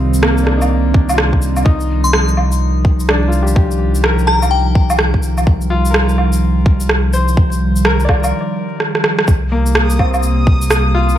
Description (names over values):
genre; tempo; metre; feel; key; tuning
future garage; 126 BPM; 4/4; swing 63% on 16ths; C minor; A4 = 437 Hz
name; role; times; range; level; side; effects
bright upright piano; accompaniment; 0.0-11.2 s; G3 to D5; -22 LUFS; left 3 dB; sidechain pumping, digital delay
warbly tape-like pad; sustained chords; 0.0-11.2 s; C3 to G4; -20 LUFS; right 2 dB; chorus, built-in reverb, sidechain pumping
warm sub bass; bass; 0.0-11.2 s; C2; -15 LUFS; equal; sidechain pumping
electronic shaker, rim click and woodblock; drums; 0.1-11.2 s; none; -17 LUFS; right 1 dB; overdrive
electronic kick drum; drums; 0.9-10.6 s; none; -12 LUFS; equal; overdrive
glassy synth bell; melody; 2.0-5.0 s; G5 to C6; -19 LUFS; left 4 dB; chorus, phaser, ping-pong delay
backwards swelling texture; texture; 9.8-11.2 s; Eb6; -24 LUFS; left 2 dB; built-in reverb
room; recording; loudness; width
light reverb; vinyl crackle; -12 LUFS; side -11 dB against mid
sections
0.0-9.3 A section; 9.3-11.2 A section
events
break 8.3-9.3; drum fill 8.8-9.3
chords
0.0 Cm7